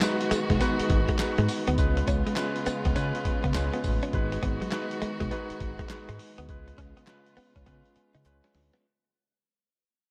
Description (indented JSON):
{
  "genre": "R&B, new jack swing",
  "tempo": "102 BPM",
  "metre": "4/4",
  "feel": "swing 64% on 16ths",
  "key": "unclear",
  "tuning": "A4 = 444 Hz",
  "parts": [
    { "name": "tine electric piano", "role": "accompaniment", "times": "0.0-8.9 s", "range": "G#3 to G#5", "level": "-34 LUFS", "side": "equal", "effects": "none" },
    { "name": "warm studio string section", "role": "sustained chords", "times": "0.0-8.8 s", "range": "C#3 to F#4", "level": "-38 LUFS", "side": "equal", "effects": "none" },
    { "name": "direct-recorded clean electric guitar", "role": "riff", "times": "0.0-8.8 s", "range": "F#3 to D#4", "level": "-35 LUFS", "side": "equal", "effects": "lush chorus" },
    { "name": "boom bap sampler-style drum kit", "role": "drums", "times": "0.0-8.8 s", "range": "handclaps, hi-hat, kick drum, snare drum, tambourine", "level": "-33 LUFS", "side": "equal", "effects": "none" },
    { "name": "group handclap", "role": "percussion", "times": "0.0-8.4 s", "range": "none", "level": "-46 LUFS", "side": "equal", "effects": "none" },
    { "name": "deep dub fingered electric bass", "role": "bass", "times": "0.3-8.7 s", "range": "G#1 to C#3", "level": "-32 LUFS", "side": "equal", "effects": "none" }
  ],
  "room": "light reverb, digital ambience",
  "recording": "none",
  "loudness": "-28 LUFS",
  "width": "mono",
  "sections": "0.0-8.8 A section",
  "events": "fade-out 0.0-8.8; drum fill 7.7-8.8; tine electric piano fill 7.7-8.8",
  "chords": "0.0 G#m7; 1.8 C#7; 4.1 G#m7; 6.5 C#7"
}